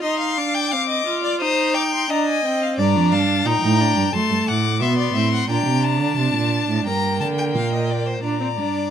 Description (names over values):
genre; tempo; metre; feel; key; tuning
classical, baroque-style fugue for string quartet; 88 BPM; 4/4; straight; unclear; A4 = 441 Hz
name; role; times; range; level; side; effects
warm violin; melody; 0.0-8.9 s; F5 to Eb6; -25 LUFS; left 8 dB; none
rich violin; second line; 0.0-8.9 s; C5 to Bb5; -24 LUFS; left 3 dB; none
warm viola; accompaniment; 0.0-8.9 s; A3 to F4; -23 LUFS; right 2 dB; none
warm cello; bass; 2.8-8.9 s; F2 to D3; -21 LUFS; right 3 dB; none
room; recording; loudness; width
moderate studio reverb, RT60 0.8 s; minimal, uncompressed stereo recording; -17 LUFS; side -8 dB against mid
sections
0.0-8.2 A section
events
none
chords
0.0 Cm; 1.4 Cm/Eb; 2.8 Gm; 4.1 F#dim; 5.5 Gm/Bb; 6.9 Gm